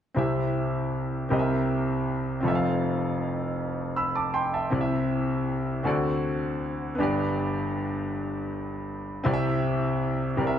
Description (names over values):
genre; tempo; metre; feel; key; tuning
gospel; 53 BPM (dotted quarters); 6/8; straight; C major; A4 = 441 Hz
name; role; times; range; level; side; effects
bright grand piano; solo; 0.1-10.6 s; F1 to E6; -25 LUFS; equal; none
room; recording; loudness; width
moderate large studio reverb, RT60 1.3 s; none; -25 LUFS; side -9 dB against mid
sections
0.2-9.3 A section; 9.3-10.6 B section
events
none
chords
0.2 C; 1.3 C7; 2.5 F; 4.7 C; 5.9 D7; 7.0 G; 9.3 C